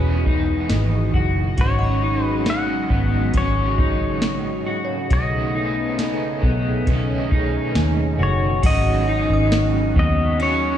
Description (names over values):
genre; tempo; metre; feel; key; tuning
dream pop; 68 BPM; 4/4; straight; unclear; A4 = 440 Hz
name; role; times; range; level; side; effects
pedal steel guitar; melody; 0.0-10.8 s; B4 to F#5; -26 LUFS; left 3 dB; ping-pong delay
crunchy overdriven guitar; accompaniment; 0.0-10.8 s; G#2 to G#4; -28 LUFS; right 5 dB; tremolo, lush chorus
phased analog pad; sustained chords; 0.0-10.8 s; B2 to D#5; -26 LUFS; right 2 dB; phaser, chorus
electric guitar at the edge of break-up; arpeggios; 0.0-10.8 s; B3 to F#4; -26 LUFS; left 2 dB; lush chorus, ping-pong delay
vintage muted fingered electric bass; bass; 0.0-10.8 s; E1 to D#2; -22 LUFS; equal; none
soft vintage rhythm box; drums; 0.3-10.6 s; crash cymbal, hi-hat, kick drum, ride cymbal, snare drum, tambourine; -21 LUFS; equal; none
synth chime; texture; 1.8-10.8 s; C#5 to D#6; -38 LUFS; equal; none
room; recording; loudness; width
light reverb; played on a big sound system in a bare room, stone room reverb; -17 LUFS; side -10 dB against mid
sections
0.0-8.6 A section; 8.6-10.8 B section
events
none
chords
0.0 Emaj7; 1.6 G#7sus4; 5.1 B13; 8.6 G#7sus4